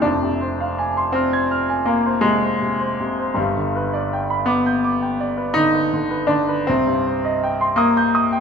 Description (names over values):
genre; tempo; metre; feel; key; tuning
classical, romantic nocturne for solo piano; 54 BPM (dotted quarters); 9/8; rubato; unclear; A4 = 440 Hz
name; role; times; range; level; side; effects
clear concert grand piano; solo; 0.0-8.4 s; F1 to Ab6; -17 LUFS; equal; none
room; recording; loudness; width
moderate recital hall reverb, RT60 1.3 s; minimal, uncompressed stereo recording; -17 LUFS; side -6 dB against mid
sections
0.0-8.4 A section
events
none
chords
0.0 Fm; 3.4 G; 6.7 Cm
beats
| 0.03 1.14 2.25 | 3.37 4.47 5.55 | 6.67 7.78